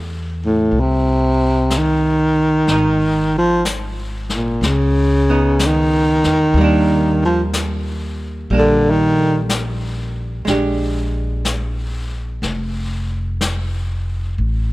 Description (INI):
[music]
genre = jazz ballad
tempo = 62 BPM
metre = 4/4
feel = swing 69% on 8ths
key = unclear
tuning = A4 = 440 Hz
[part]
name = archtop guitar, miked and amplified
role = accompaniment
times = 0.0-14.4 s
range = G3 to G4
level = -22 LUFS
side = right 2 dB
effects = none
[part]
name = upright bass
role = bass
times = 0.0-14.7 s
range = F1 to E2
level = -21 LUFS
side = equal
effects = none
[part]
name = growling baritone saxophone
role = melody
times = 0.5-9.4 s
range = A2 to F3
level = -15 LUFS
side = equal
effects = none
[part]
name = vintage brush drum kit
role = drums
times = 0.7-14.7 s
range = brushed snare drum, hi-hat, snare drum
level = -26 LUFS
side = left 2 dB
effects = none
[sound]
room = little or no reverb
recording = none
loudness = -15 LUFS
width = side -19 dB against mid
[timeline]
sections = 0.0-14.7 A section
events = baritone saxophone solo 0.0-14.7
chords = 0.0 Fmaj9 (rootless); 2.7 Ab5; 4.6 Dbsus2; 6.6 Ebmaj7; 10.5 Bb6